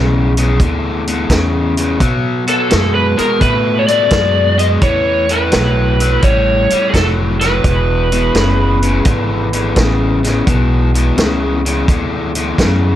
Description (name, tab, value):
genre	electric blues shuffle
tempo	85 BPM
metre	4/4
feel	swing 67% on 8ths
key	E mixolydian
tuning	A4 = 439 Hz
part	overdriven semi-hollow guitar	riff	0.0-13.0 s	E2 to A3	-17 LUFS	left 2 dB	none
part	upright bass	bass	0.0-13.0 s	E1 to B2	-16 LUFS	equal	none
part	vintage drum kit	drums	0.4-12.8 s	hi-hat, kick drum, snare drum	-17 LUFS	equal	none
part	lead guitar through a small cranked amp	melody	2.5-12.5 s	G#4 to D#5	-16 LUFS	equal	overdrive
room	light reverb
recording	none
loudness	-11 LUFS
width	side -12 dB against mid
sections	0.0-13.0 A section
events	none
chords	0.0 E7(no3); 2.0 B5; 4.8 Asus2; 7.6 E9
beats	0.60 1.30 | 2.00 2.71 3.41 4.12 | 4.83 5.53 6.24 6.94 | 7.65 8.35 9.06 9.76 | 10.47 11.17 11.88 12.58